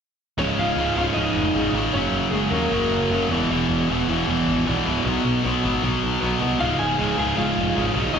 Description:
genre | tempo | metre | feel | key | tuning
punk | 155 BPM | 4/4 | straight | unclear | A4 = 440 Hz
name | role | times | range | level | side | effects
lightly driven lead guitar | melody | 0.4-3.3, 6.6-8.2 s | Ab3 to Ab5 | -25 LUFS | equal | slapback echo
distorted electric guitar | riff | 0.4-8.2 s | Db2 to Cb4 | -24 LUFS | right 9 dB | distortion, slapback echo
tight distorted guitar | riff | 0.4-8.2 s | Db2 to Cb4 | -24 LUFS | left 12 dB | distortion
picked electric bass | bass | 0.4-8.2 s | Db1 to Eb2 | -27 LUFS | left 1 dB | none
room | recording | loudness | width
light reverb | live gig heard through the venue's PA, recital hall reverb | -19 LUFS | side -7 dB against mid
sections
0.4-8.2 A section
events
none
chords
0.4 Db; 1.9 Gb; 3.3 E5; 5.0 Cb5; 6.6 Db

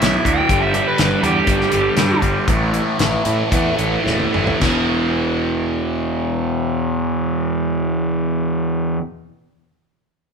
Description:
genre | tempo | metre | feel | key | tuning
classic rock | 105-124 BPM | 4/4 | straight | E minor | A4 = 440 Hz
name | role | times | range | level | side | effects
nasal lead guitar with a parked wah | melody | 0.0-2.2 s | G4 to G5 | -20 LUFS | right 2 dB | overdrive
overdriven electric guitar | riff | 0.0-9.0 s | E2 to A3 | -18 LUFS | right 1 dB | phaser
fuzz picked electric bass | bass | 0.0-9.0 s | E1 to A2 | -23 LUFS | equal | overdrive
damped 70s drum kit | drums | 0.0-4.8 s | crash cymbal, hi-hat, kick drum, snare drum, toms | -21 LUFS | left 1 dB | none
room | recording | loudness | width
moderate large studio reverb, RT60 1.1 s | band playing live in one room | -16 LUFS | side -5 dB against mid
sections
0.0-4.6 A section; 4.6-9.2 B section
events
lead electric guitar solo 0.0-4.6; slowing down 0.5-4.6; drum fill 4.0-4.6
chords
0.5 G5; 2.5 A5; 4.6 E5

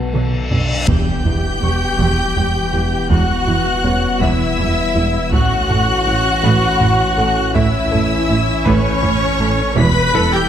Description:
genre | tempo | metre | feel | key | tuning
cinematic, hybrid orchestral and electronic film score | 54 BPM (dotted quarters) | 6/8 | straight | E dorian | A4 = 440 Hz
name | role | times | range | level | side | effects
warm French horn section | sustained chords | 0.0-10.5 s | E3 to E4 | -26 LUFS | left 4 dB | none
punchy sub bass | bass | 0.0-10.5 s | E1 to B1 | -25 LUFS | equal | none
reverse cymbal and impact | sound effects | 0.0-3.1 s | none | -25 LUFS | left 1 dB | none
bright grand piano | texture | 0.0-10.5 s | C#4 to C#6 | -29 LUFS | equal | digital delay
warm symphonic violin section | melody | 0.1-10.5 s | D5 to B6 | -23 LUFS | left 3 dB | none
rich symphonic violin section | second line | 0.1-10.5 s | A4 to B5 | -22 LUFS | left 2 dB | none
rich symphonic viola section | accompaniment | 0.1-10.5 s | F#3 to B4 | -21 LUFS | equal | none
harp-like synth pluck | arpeggios | 0.1-10.4 s | E3 to A4 | -25 LUFS | left 2 dB | chorus, digital delay
rubbery square bass | riff | 0.1-10.4 s | E2 to B2 | -22 LUFS | right 2 dB | none
rich symphonic cello section | bass | 0.1-10.2 s | E2 to B2 | -23 LUFS | right 4 dB | none
rich symphonic double bass section | bass | 0.1-10.2 s | E1 to B1 | -24 LUFS | right 4 dB | none
taiko ensemble | drums | 0.1-10.5 s | none | -23 LUFS | equal | none
room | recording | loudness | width
wet concert hall reverb, RT60 2.0 s | none | -13 LUFS | side -9 dB against mid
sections
0.9-10.5 A section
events
drum fill 0.0-0.9; reverse cymbal 0.0-0.9; impact 0.9-3.1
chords
0.0 Bm7; 0.9 Em; 5.3 A; 9.8 Em

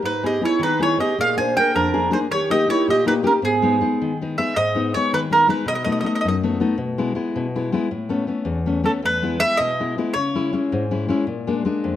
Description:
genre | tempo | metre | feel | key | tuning
italian folk, Italian serenade | 107 BPM (dotted quarters) | 6/8 | rubato | G# harmonic minor | A4 = 444 Hz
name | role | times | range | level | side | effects
warm clarinet | second line | 0.0-4.2 s | B3 to B#4 | -22 LUFS | right 4 dB | none
nylon-string guitar | accompaniment | 0.0-12.0 s | E2 to G#4 | -22 LUFS | left 3 dB | none
mandolin | melody | 0.1-6.3, 8.9-10.5 s | G#4 to G#5 | -20 LUFS | right 2 dB | none
room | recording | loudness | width
moderate recital hall reverb, RT60 1.4 s | close, detailed microphones | -18 LUFS | side -11 dB against mid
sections
0.0-4.6 A section; 4.6-12.0 B section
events
none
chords
0.0 G#m; 1.2 A#7; 2.3 D#; 3.4 G#m; 5.7 B7; 6.8 E/B; 7.9 Aadd9; 9.0 E; 10.2 C#m; 11.3 A#7

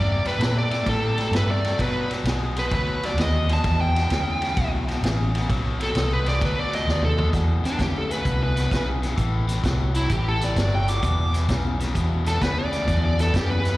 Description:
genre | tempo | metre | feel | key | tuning
electric blues shuffle | 130 BPM | 4/4 | swing 67% on 8ths | E minor | A4 = 440 Hz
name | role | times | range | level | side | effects
smooth overdriven lead guitar | melody | 0.0-13.8 s | D4 to D6 | -27 LUFS | right 1 dB | slapback echo, tape echo
overdriven electric guitar | riff | 0.0-13.8 s | E2 to A3 | -29 LUFS | left 4 dB | slapback echo
vintage muted fingered electric bass | bass | 0.0-13.8 s | E1 to B2 | -23 LUFS | equal | none
vintage drum kit | drums | 0.3-13.7 s | hi-hat, kick drum, ride cymbal, snare drum, toms | -28 LUFS | equal | none
room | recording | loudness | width
little or no reverb | live gig heard through the venue's PA, recital hall reverb | -20 LUFS | side -17 dB against mid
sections
0.0-7.3 A section; 7.3-13.8 B section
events
drum fill 6.9-7.3; lead electric guitar solo 7.3-13.8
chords
0.0 C5; 1.8 B; 3.6 Em7; 5.5 B; 7.3 E5; 9.2 Am7; 11.0 E7(no3)

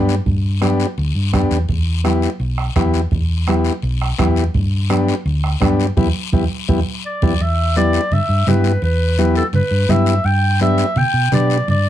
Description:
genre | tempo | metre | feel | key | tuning
latin, cumbia | 168 BPM | 4/4 | straight | E minor | A4 = 441 Hz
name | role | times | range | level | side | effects
combo organ | accompaniment | 0.0-11.6 s | B3 to G4 | -19 LUFS | left 3 dB | none
hollow-body short-scale fingered electric bass | bass | 0.0-11.9 s | B1 to B2 | -17 LUFS | equal | none
guiro | percussion | 0.1-11.9 s | none | -30 LUFS | left 9 dB | none
bombo | percussion | 0.3-7.3 s | none | -21 LUFS | right 2 dB | none
congas | percussion | 0.3-11.9 s | none | -23 LUFS | right 4 dB | none
clear clarinet | melody | 7.1-11.9 s | A4 to G5 | -20 LUFS | right 1 dB | none
room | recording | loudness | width
light reverb | dark, warm production | -14 LUFS | side -12 dB against mid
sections
0.0-7.4 A section; 7.4-11.9 B section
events
band accent 6.0-7.4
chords
0.0 G; 1.7 Em; 4.5 G; 6.0 Em; 10.3 G

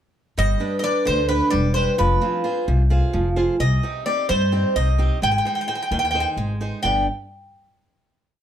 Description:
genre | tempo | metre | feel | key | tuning
greek folk, Greek bouzouki band | 260 BPM (eighths) | 7/8 | straight | G phrygian dominant | A4 = 440 Hz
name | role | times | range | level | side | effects
Greek bouzouki | melody | 0.4-7.0 s | B4 to G5 | -22 LUFS | equal | none
picked old ladder-braced acoustic guitar | accompaniment | 0.4-7.1 s | G2 to D5 | -24 LUFS | right 2 dB | none
upright bass | bass | 0.4-7.1 s | E1 to G2 | -21 LUFS | left 1 dB | none
room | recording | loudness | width
light reverb | dark, warm production | -18 LUFS | side -10 dB against mid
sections
0.4-6.8 A section; 6.8-8.4 final chord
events
none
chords
0.4 G; 2.0 Fm; 3.6 Cm; 5.2 Ab; 6.8 G

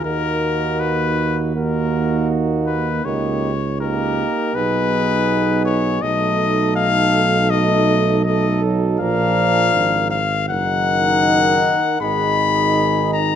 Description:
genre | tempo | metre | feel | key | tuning
classical, brass quintet | 80 BPM | 4/4 | straight | Eb minor | A4 = 440 Hz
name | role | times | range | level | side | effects
clear trumpet | melody | 0.0-13.4 s | Bb4 to Cb6 | -19 LUFS | left 6 dB | none
mellow flugelhorn | second line | 0.0-13.4 s | Gb4 to Bb4 | -25 LUFS | right 8 dB | none
warm French horn | accompaniment | 0.0-13.4 s | D4 to Eb4 | -25 LUFS | left 2 dB | none
warm euphonium | accompaniment | 0.0-13.4 s | Eb3 to Cb4 | -25 LUFS | right 4 dB | none
warm tuba | bass | 0.0-13.4 s | Gb1 to Eb2 | -21 LUFS | right 3 dB | none
room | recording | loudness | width
moderate recital hall reverb, RT60 1.4 s | none | -16 LUFS | side -9 dB against mid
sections
0.0-13.4 A section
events
none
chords
0.1 Ebm; 3.0 Eb7/Db; 4.5 Abm/Cb; 6.0 B7; 9.0 Bb; 10.5 Ebm/Gb; 12.0 Abm

